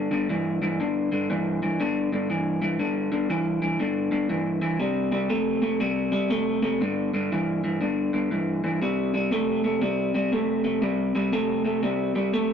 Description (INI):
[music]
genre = blues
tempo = 120 BPM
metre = 4/4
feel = swing 64% on 8ths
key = unclear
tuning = A4 = 442 Hz
[part]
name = electric guitar through a small old amp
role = solo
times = 0.0-12.5 s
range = G2 to A3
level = -23 LUFS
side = equal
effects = spring reverb
[sound]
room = moderate studio ambience, RT60 0.5 s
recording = rough rehearsal-room recording, tube saturation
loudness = -23 LUFS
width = side -7 dB against mid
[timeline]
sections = 0.8-12.5 A section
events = none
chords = 0.0 G5; 4.8 C5; 6.8 G5; 8.8 C5